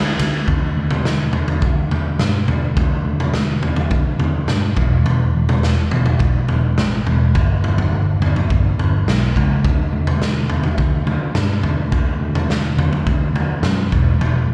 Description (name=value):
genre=quiet-loud alternative rock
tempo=105 BPM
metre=4/4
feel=straight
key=D major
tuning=A4 = 440 Hz
part: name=picked electric bass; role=bass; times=0.0-14.5 s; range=E1 to G2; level=-20 LUFS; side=equal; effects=none
part: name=raw garage drum kit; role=drums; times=0.2-14.3 s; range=kick drum, ride cymbal, snare drum, toms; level=-21 LUFS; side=equal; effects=none
room=little or no reverb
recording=live gig heard through the venue's PA, club reverb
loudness=-18 LUFS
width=mono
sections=0.5-14.5 A section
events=none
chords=none